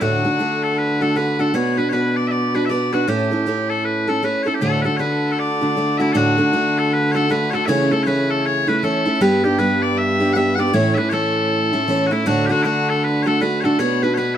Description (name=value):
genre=celtic folk, Celtic hornpipe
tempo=157 BPM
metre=4/4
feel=swing 61% on 8ths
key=D major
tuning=A4 = 438 Hz
part: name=loud bright bagpipes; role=melody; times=0.0-14.4 s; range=E4 to F#5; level=-21 LUFS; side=left 2 dB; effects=tape echo
part: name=picked steel-string acoustic guitar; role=accompaniment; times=0.0-14.4 s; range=D2 to B4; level=-19 LUFS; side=right 2 dB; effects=none
part: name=mellow baritone saxophone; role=bass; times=0.0-14.4 s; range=G2 to D3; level=-23 LUFS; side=left 1 dB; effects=none
room=moderate studio reverb, RT60 0.6 s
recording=close, detailed microphones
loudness=-16 LUFS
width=side -10 dB against mid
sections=0.0-6.1 A section; 6.1-14.4 A section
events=none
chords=0.0 D; 1.5 Bm; 3.1 A; 4.6 D; 7.7 A/C#; 9.2 G; 10.7 A; 12.3 D; 13.8 Bm